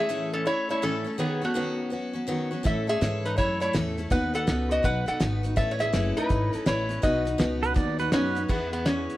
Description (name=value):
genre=honky-tonk and classic country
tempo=164 BPM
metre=4/4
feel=swing 64% on 8ths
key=unclear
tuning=A4 = 440 Hz
part: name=lap resonator guitar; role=melody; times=0.0-9.2 s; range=A3 to F#5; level=-27 LUFS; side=equal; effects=none
part: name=picked steel-string acoustic guitar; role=accompaniment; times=0.0-9.2 s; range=A2 to B4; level=-30 LUFS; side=left 1 dB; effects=none
part: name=upright bass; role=bass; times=2.7-9.1 s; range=F#1 to A2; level=-30 LUFS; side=equal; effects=none
part: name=cloth-damped thuddy drum kit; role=drums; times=2.7-9.2 s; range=crash cymbal, hi-hat, kick drum, snare drum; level=-28 LUFS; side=equal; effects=none
part: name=pedal steel guitar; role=second line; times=7.6-8.4 s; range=B4 to D5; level=-30 LUFS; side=right 5 dB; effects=none
room=light reverb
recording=none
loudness=-24 LUFS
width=side -15 dB against mid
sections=0.0-8.5 A section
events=none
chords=0.0 A; 1.2 Badd9; 2.7 A; 4.1 B; 5.6 Aadd9; 7.0 B; 8.5 E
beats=0.10 0.47 0.83 | 1.19 1.56 1.92 2.29 | 2.65 3.02 3.38 3.75 | 4.11 4.47 4.84 5.20 | 5.57 5.93 6.30 6.67 | 7.03 7.40 7.76 8.13 | 8.49 8.86